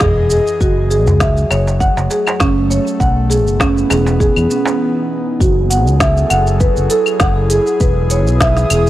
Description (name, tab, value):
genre	organic downtempo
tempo	100 BPM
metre	4/4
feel	swing 54% on 16ths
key	F# dorian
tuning	A4 = 440 Hz
part	airy breathy pad	sustained chords	0.0-8.9 s	B2 to D#6	-21 LUFS	left 1 dB	chorus, sidechain pumping
part	marimba with medium mallets	arpeggios	0.0-8.9 s	C#4 to F#5	-16 LUFS	right 1 dB	tape echo
part	fretless electric bass	bass	0.0-8.9 s	E1 to E2	-15 LUFS	equal	ensemble chorus
part	electronic kick drum	drums	0.0-8.5 s	none	-16 LUFS	equal	studio reverb
part	organic electronic drum kit	drums	0.0-8.9 s	claves, hi-hat, shaker, snare drum	-20 LUFS	equal	studio reverb
part	darbuka	percussion	0.0-4.8 s	none	-20 LUFS	right 1 dB	none
room	little or no reverb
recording	dry, gritty hardware recording, cassette tape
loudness	-11 LUFS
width	side -14 dB against mid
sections	0.0-5.4 A section; 5.4-8.9 B section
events	break 4.8-5.4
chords	0.0 Emaj7; 0.6 F#madd9; 3.0 B7sus4; 4.2 Emaj7; 5.4 F#m9; 7.8 Emaj7